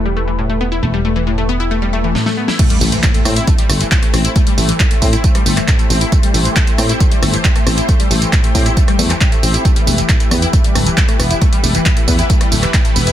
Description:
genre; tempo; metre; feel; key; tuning
uplifting trance; 136 BPM; 4/4; straight; A minor; A4 = 443 Hz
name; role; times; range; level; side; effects
analog string pad; sustained chords; 0.0-13.1 s; E3 to C5; -23 LUFS; right 1 dB; ensemble chorus, sidechain pumping
solid FM bass; bass; 0.0-13.1 s; D1 to A2; -17 LUFS; equal; sidechain pumping
wide unison pluck; arpeggios; 0.1-13.1 s; A2 to E4; -20 LUFS; left 4 dB; phaser, sidechain pumping, tape echo
swell and impact; sound effects; 1.9-4.4 s; none; -24 LUFS; equal; none
big-room dance drum kit; drums; 2.2-13.1 s; crash cymbal, handclaps, hi-hat, rim click, snare drum, tambourine; -18 LUFS; right 1 dB; small room reverb, sidechain pumping on hats, sidechain pumping on perc, sidechain pumping on cymbals
electronic kick drum; drums; 2.6-12.8 s; none; -13 LUFS; equal; small room reverb
room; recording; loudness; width
little or no reverb; dense, heavily limited modern master; -11 LUFS; side -12 dB against mid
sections
0.0-2.6 A section; 2.6-13.1 B section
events
swell 1.9-2.6; drum fill 2.2-2.6; drop 2.6-13.1; impact 2.6-4.4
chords
0.0 Em; 2.6 Am7; 9.7 Em

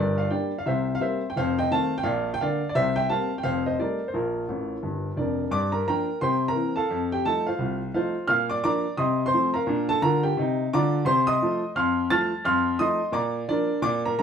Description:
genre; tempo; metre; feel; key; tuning
jazz, stride piano; 173 BPM; 4/4; swing 61% on 8ths; Bb major; A4 = 440 Hz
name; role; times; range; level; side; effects
warm grand piano; solo; 0.0-14.2 s; F1 to A6; -22 LUFS; equal; none
room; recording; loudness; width
wet studio reverb, RT60 0.5 s; heard from further back in the room; -22 LUFS; side -7 dB against mid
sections
0.0-5.5 A section; 5.5-14.2 B section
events
grand piano fill 4.5-5.5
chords
0.0 Gm; 0.7 C5; 1.4 F7; 2.1 Bb; 2.8 C7; 3.4 F9; 4.1 Bb; 5.5 Gm7; 6.2 C7; 6.9 F7; 8.3 Bb; 9.0 F7/C; 9.7 Bb; 11.1 F7; 13.1 Bb

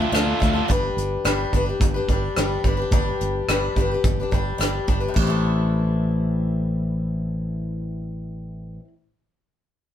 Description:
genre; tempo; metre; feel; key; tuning
folk rock and heartland rock; 107 BPM; 4/4; straight; A minor; A4 = 440 Hz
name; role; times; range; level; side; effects
picked swing-style acoustic guitar; accompaniment; 0.0-9.0 s; A2 to B4; -26 LUFS; left 4 dB; none
overdriven electric guitar; riff; 0.0-0.7 s; D3 to F4; -24 LUFS; right 2 dB; none
fingered electric bass; bass; 0.0-8.8 s; G1 to D2; -24 LUFS; equal; none
soft brush drum kit; drums; 0.1-5.3 s; china cymbal, hi-hat, kick drum, rim click; -23 LUFS; right 1 dB; none
room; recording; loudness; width
moderate studio reverb, RT60 0.8 s; band playing live in one room; -20 LUFS; side -10 dB against mid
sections
0.0-5.2 A section; 5.2-7.4 B section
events
none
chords
0.0 Dm; 0.7 G; 5.2 Am7

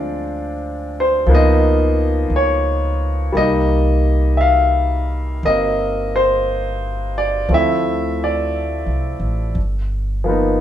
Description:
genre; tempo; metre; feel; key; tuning
jazz ballad; 58 BPM; 4/4; swing 67% on 8ths; C minor; A4 = 440 Hz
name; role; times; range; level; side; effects
clear concert grand piano; accompaniment; 0.0-10.6 s; F3 to F5; -17 LUFS; left 1 dB; none
upright bass; bass; 0.0-10.6 s; G1 to D2; -19 LUFS; equal; none
room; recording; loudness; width
wet studio reverb, RT60 0.7 s; band playing live in one room; -15 LUFS; side -11 dB against mid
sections
0.0-10.6 A section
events
none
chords
0.0 Dm7b5; 1.3 Db13; 3.4 Cm7; 7.5 Dm7; 9.6 G7alt

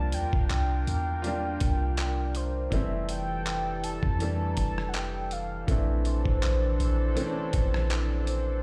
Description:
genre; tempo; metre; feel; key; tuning
contemporary R&B; 81 BPM; 4/4; swing 54% on 16ths; unclear; A4 = 438 Hz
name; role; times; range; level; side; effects
mellow horn-like synth lead; melody; 0.0-8.6 s; C5 to Bb5; -37 LUFS; equal; chorus, tape echo
clear concert grand piano; accompaniment; 0.0-8.6 s; E3 to F4; -38 LUFS; equal; none
chorused pulse-width pad; sustained chords; 0.0-8.6 s; E3 to Bb4; -39 LUFS; equal; sidechain pumping
warm 808-style bass; bass; 0.0-8.6 s; F1 to F2; -31 LUFS; equal; none
dusty soul sampler-style drum kit; drums; 0.1-8.5 s; handclaps, hi-hat, kick drum, rim click; -34 LUFS; equal; none
room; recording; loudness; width
little or no reverb; played on a big sound system in a bare room, large studio reverb; -28 LUFS; mono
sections
0.0-8.6 A section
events
none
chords
0.0 C9sus4; 2.7 Fmaj9; 5.7 Bbmaj9#11

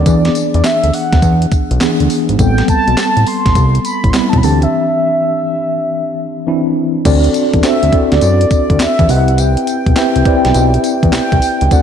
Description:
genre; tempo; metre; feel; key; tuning
R&B, new jack swing; 103 BPM; 4/4; swing 66% on 16ths; unclear; A4 = 440 Hz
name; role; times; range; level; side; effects
mellow horn-like synth lead; melody; 0.0-11.8 s; D5 to C6; -17 LUFS; equal; chorus, ping-pong delay
mellow tine electric piano; accompaniment; 0.0-11.8 s; E3 to E5; -15 LUFS; left 1 dB; medium stereo tremolo
fat analog bass; bass; 0.0-11.8 s; G#1 to F#2; -13 LUFS; equal; none
clean 12-bit digital drum machine; drums; 0.1-11.8 s; crash cymbal, handclaps, hi-hat, kick drum, snare drum, tambourine; -16 LUFS; equal; overdrive, vintage 12-bit sampler grit
room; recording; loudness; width
moderate lush hall reverb, RT60 2.1 s; dreamy mix soaked in reverb; -10 LUFS; side -8 dB against mid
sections
0.0-7.1 A section; 7.1-11.8 B section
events
break 4.7-7.1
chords
0.1 E7; 2.4 Am9; 4.4 D9sus4; 7.1 D7; 9.1 Cmaj7

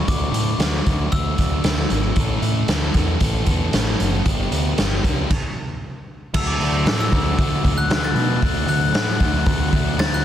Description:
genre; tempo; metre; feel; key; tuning
indie rock; 115 BPM; 4/4; straight; D major; A4 = 439 Hz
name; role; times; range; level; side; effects
glockenspiel with brass mallets; melody; 0.0-1.9, 6.4-10.2 s; C#6 to A6; -27 LUFS; left 4 dB; slapback echo
fuzz guitar; riff; 0.0-10.2 s; E3 to A4; -25 LUFS; equal; distortion
growling picked electric bass; bass; 0.1-10.2 s; F#1 to B2; -22 LUFS; equal; overdrive
raw garage drum kit; drums; 0.1-10.1 s; crash cymbal, hi-hat, kick drum, snare drum; -21 LUFS; equal; none
room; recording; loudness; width
small room ambience; dense, heavily limited modern master; -17 LUFS; side -10 dB against mid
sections
0.0-6.4 A section; 6.4-10.2 B section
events
stop 5.3-6.4; glockenspiel solo 6.4-10.2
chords
0.0 D; 2.2 A; 4.3 G; 6.4 D

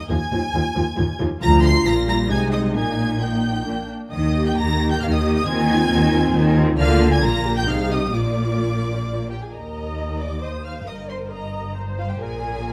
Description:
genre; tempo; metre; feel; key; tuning
quick classical-period movement for string orchestra; 134 BPM; 3/4; straight; Eb major; A4 = 437 Hz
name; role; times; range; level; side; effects
warm studio violin section; melody; 0.0-12.7 s; F5 to C7; -32 LUFS; equal; none
warm studio violin section; second line; 0.0-12.7 s; F4 to C6; -30 LUFS; equal; none
warm studio viola section; accompaniment; 0.1-12.7 s; F3 to Eb5; -26 LUFS; equal; none
dark studio double bass section; bass; 0.1-12.7 s; G1 to Eb2; -25 LUFS; equal; none
warm studio cello section; bass; 0.1-12.7 s; D2 to Eb3; -27 LUFS; equal; none
room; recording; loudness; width
moderate scoring stage reverb, RT60 1.8 s; none; -20 LUFS; mono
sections
0.0-9.5 A section; 9.5-12.7 B section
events
none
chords
0.1 Fm7/Eb; 1.4 Bb/D; 2.3 Ab/C; 2.8 Eb/Bb; 3.7 Bb; 4.1 Eb; 5.5 Fm7/Eb; 6.8 Bb/D; 7.7 Ab/C; 8.1 Bb; 9.5 Eb5; 10.9 Eb/G; 12.2 Bb7(no3)

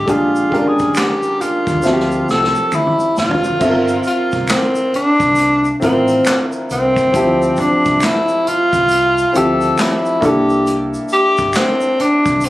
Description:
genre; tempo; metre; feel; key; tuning
R&B, neo-soul; 68 BPM; 4/4; swing 62% on 16ths; unclear; A4 = 439 Hz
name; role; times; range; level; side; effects
breathy tenor saxophone; melody; 0.0-12.5 s; C4 to A4; -15 LUFS; equal; none
warm baby grand piano; accompaniment; 0.0-12.5 s; F3 to E5; -18 LUFS; left 1 dB; none
deep dub fingered electric bass; bass; 0.0-12.5 s; F1 to Eb2; -26 LUFS; equal; none
unplugged drum kit; drums; 0.1-12.5 s; crash cymbal, handclaps, hi-hat, kick drum, snare drum, toms; -21 LUFS; equal; none
egg shaker and finger snaps; percussion; 0.1-12.5 s; none; -32 LUFS; right 1 dB; none
room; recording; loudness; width
light reverb, studio reverb; recorded on a phone in the room, club reverb, compression; -12 LUFS; side -16 dB against mid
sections
0.0-3.6 A section; 3.6-12.5 B section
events
drum fill 1.8-3.6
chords
0.1 Bb6; 1.8 Dm9; 3.6 Gm11 (rootless); 7.1 Dm9; 10.2 C9

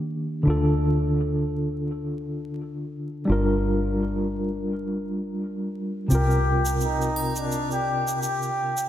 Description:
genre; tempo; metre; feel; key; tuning
trip hop; 85 BPM; 4/4; swing 57% on 16ths; G minor; A4 = 440 Hz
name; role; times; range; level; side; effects
tine electric piano; accompaniment; 0.0-8.9 s; C3 to Bb4; -25 LUFS; equal; tremolo, tape echo
deep dub fingered electric bass; bass; 0.0-8.9 s; G1 to Eb2; -27 LUFS; equal; none
trumpet with bucket mute; melody; 6.1-8.9 s; D4 to G4; -26 LUFS; equal; tape echo
tube shaker and triangle; percussion; 6.1-8.9 s; none; -35 LUFS; right 2 dB; none
room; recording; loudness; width
moderate lush hall reverb, RT60 2.7 s; dreamy mix soaked in reverb, vinyl crackle; -23 LUFS; side -11 dB against mid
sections
0.0-8.9 A section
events
none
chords
0.5 Dm; 3.3 Gm7; 6.1 C7sus4

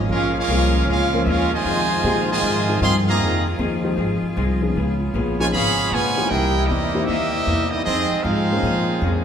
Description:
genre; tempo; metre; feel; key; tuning
jazz; 155 BPM; 4/4; swing 65% on 8ths; F minor; A4 = 438 Hz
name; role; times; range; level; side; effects
bright saxophone section; sustained chords; 0.0-9.2 s; C3 to Ab4; -31 LUFS; equal; none
upright bass; bass; 0.0-9.2 s; Ab1 to Bb2; -22 LUFS; equal; none
brilliant trumpet section; melody; 0.1-9.2 s; Bb3 to C6; -22 LUFS; right 1 dB; none
warm trombone section; second line; 0.1-9.2 s; Cb3 to G4; -26 LUFS; right 2 dB; none
archtop guitar, miked and amplified; accompaniment; 0.1-9.2 s; F2 to Ab4; -27 LUFS; left 4 dB; none
dark baby grand piano; accompaniment; 0.5-8.6 s; E3 to Bb4; -27 LUFS; left 2 dB; none
room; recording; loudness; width
wet recital hall reverb, RT60 1.7 s; recorded in a church or concert hall; -17 LUFS; side -8 dB against mid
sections
0.0-9.2 A section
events
none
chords
0.0 Bbm7; 1.7 Fm7; 4.8 Db7; 6.3 C7#9; 7.9 Fm7

